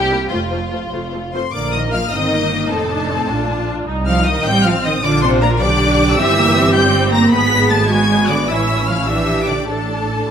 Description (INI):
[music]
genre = quick classical-period movement for string orchestra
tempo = 97-106 BPM (dotted quarters)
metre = 6/8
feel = rubato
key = Bb major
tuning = A4 = 440 Hz
[part]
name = rich studio violin section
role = second line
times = 0.0-10.3 s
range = F4 to B5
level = -21 LUFS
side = left 3 dB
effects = none
[part]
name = clear studio cello section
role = bass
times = 0.0-10.3 s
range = F2 to B3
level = -20 LUFS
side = right 2 dB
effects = none
[part]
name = clear studio double bass section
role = bass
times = 0.0-10.3 s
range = F1 to C2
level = -21 LUFS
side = right 2 dB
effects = none
[part]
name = rich studio violin section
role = melody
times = 0.1-10.3 s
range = C5 to B6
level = -20 LUFS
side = left 4 dB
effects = none
[part]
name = clear studio viola section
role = accompaniment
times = 0.1-10.3 s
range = A3 to Bb4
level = -20 LUFS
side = right 1 dB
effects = none
[sound]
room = moderate concert hall reverb, RT60 1.9 s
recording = none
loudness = -13 LUFS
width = side -8 dB against mid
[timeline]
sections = 0.0-1.5 A section; 1.5-10.3 B section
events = none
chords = 0.3 F; 1.5 Bb; 2.1 Eb/G; 2.7 F; 3.3 Bb; 3.9 F7/C; 5.0 Bb; 5.6 G/B; 6.2 Edim/G; 7.3 G#m7b5; 8.5 A; 9.1 Gm/Bb; 9.7 Asus4